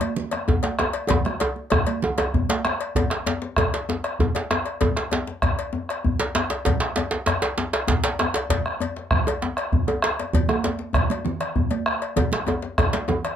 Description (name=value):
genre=west african traditional, West African drum ensemble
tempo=130 BPM (dotted quarters)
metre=12/8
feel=straight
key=none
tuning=none
part: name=bombo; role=percussion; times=0.0-13.4 s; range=none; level=-24 LUFS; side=right 1 dB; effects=none
part: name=congas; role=percussion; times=0.0-2.8, 10.3-13.2 s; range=none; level=-29 LUFS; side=right 6 dB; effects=none
part: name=cowbell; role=percussion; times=0.0-13.4 s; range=none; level=-31 LUFS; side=left 7 dB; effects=none
part: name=djembe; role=percussion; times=0.3-13.2 s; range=none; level=-27 LUFS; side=left 5 dB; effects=none
part: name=djembe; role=percussion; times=0.5-13.2 s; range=none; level=-25 LUFS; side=right 3 dB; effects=none
room=light reverb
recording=close, detailed microphones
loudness=-21 LUFS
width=side -9 dB against mid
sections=0.0-3.0 A section; 3.0-13.4 A section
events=drum fill 1.1-3.0, 9.9-10.3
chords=none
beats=0.17 0.63 | 1.10 1.56 2.03 2.49 | 2.96 3.42 3.88 4.35 | 4.81 5.27 5.73 6.20 | 6.66 7.12 7.58 8.04 | 8.50 8.96 9.42 9.88 | 10.34 10.80 11.25 11.71 | 12.17 12.63 13.08